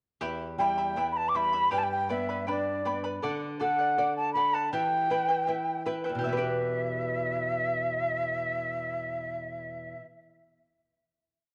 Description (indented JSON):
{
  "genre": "andean folk, Andean ensemble",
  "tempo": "80 BPM",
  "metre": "2/4",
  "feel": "straight",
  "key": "E minor",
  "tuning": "A4 = 440 Hz",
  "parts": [
    { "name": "charango", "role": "accompaniment", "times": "0.2-10.2 s", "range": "E4 to B5", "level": "-37 LUFS", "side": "equal", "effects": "none" },
    { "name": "nylon-string guitar", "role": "accompaniment", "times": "0.2-10.2 s", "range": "E2 to E5", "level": "-37 LUFS", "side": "equal", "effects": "none" },
    { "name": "reedy large quena", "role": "melody", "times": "0.6-10.0 s", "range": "D5 to D6", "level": "-30 LUFS", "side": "equal", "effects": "none" }
  ],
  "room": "moderate echo chamber reverb, RT60 1.8 s, small room ambience",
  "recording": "none",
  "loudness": "-29 LUFS",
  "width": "mono",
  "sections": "0.2-6.2 A section; 6.2-9.2 final chord",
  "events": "none",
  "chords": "0.2 Em; 1.7 G; 3.2 D; 4.7 Em"
}